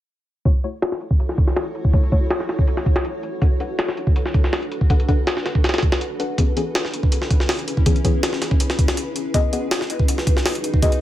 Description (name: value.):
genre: drum and bass, jungle.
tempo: 162 BPM.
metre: 4/4.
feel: straight.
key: F# minor.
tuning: A4 = 439 Hz.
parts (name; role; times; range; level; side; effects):
granular cloud pad; sustained chords; 1.0-11.0 s; C#4 to C#5; -28 LUFS; equal; built-in reverb.
deep mellow chord stab; stabs; 0.5-10.9 s; E3 to F#5; -27 LUFS; left 3 dB; chorus, dub echo.
jungle sampler-style drum kit; drums; 0.5-11.0 s; hi-hat, kick drum, snare drum; -18 LUFS; equal; low-pass filter on kick, small room ambience, low-pass filter on hats, low-pass filter on snare.
room: little or no reverb.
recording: none.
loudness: -18 LUFS.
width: side -13 dB against mid.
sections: 0.5-11.0 A section.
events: filter sweep on drum 0.5-11.0; filter sweep on synth stab 0.5-11.0.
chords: 0.5 F#m7; 3.4 Bm7; 6.4 C#m7; 9.3 G#m7.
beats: | 0.45 0.82 1.20 1.56 | 1.94 2.31 2.68 3.05 | 3.42 3.79 4.16 4.53 | 4.90 5.27 5.64 6.01 | 6.38 6.75 7.12 7.49 | 7.86 8.23 8.60 8.97 | 9.34 9.71 10.08 10.45 | 10.82.